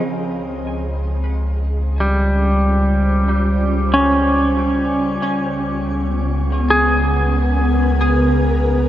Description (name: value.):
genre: ambient.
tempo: 70 BPM.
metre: 3/4.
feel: straight.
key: Db lydian.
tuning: A4 = 442 Hz.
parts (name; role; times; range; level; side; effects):
ethereal airy pad; sustained chords; 0.0-8.9 s; Db3 to Eb5; -22 LUFS; equal; ensemble chorus, built-in reverb, shimmer reverb.
semi-hollow electric guitar; arpeggios; 0.0-8.9 s; G3 to F5; -18 LUFS; equal; tape echo, shimmer reverb.
warm sub bass; bass; 0.1-8.9 s; Db2; -19 LUFS; equal; none.
room: wet huge ambient reverb, RT60 7.8 s.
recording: none.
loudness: -15 LUFS.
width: side -12 dB against mid.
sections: 0.1-8.9 A section.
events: fade-in on ambient pad 0.1-8.9.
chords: 0.1 Dbmaj7; 5.2 Abmadd9/Db.